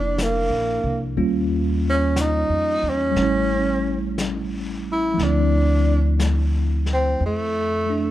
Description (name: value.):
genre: jazz.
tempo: 60 BPM.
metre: 4/4.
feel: swing 68% on 8ths.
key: unclear.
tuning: A4 = 437 Hz.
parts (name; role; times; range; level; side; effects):
breathy tenor saxophone; melody; 0.0-8.1 s; A3 to E4; -22 LUFS; right 1 dB; plate reverb.
bell-like tine electric piano; accompaniment; 0.0-8.1 s; F3 to A4; -25 LUFS; equal; medium stereo tremolo.
upright bass; bass; 0.0-8.1 s; F1 to F2; -23 LUFS; equal; none.
vintage brush drum kit; drums; 0.2-8.1 s; brushed snare drum, hi-hat, snare drum; -33 LUFS; left 2 dB; none.
room: light reverb.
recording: dark, warm production.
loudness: -19 LUFS.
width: side -14 dB against mid.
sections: 0.0-5.2 A section; 5.2-8.1 B section.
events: none.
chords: 0.0 Bbmaj9; 1.2 Eb9; 3.2 A7; 5.2 Dm7.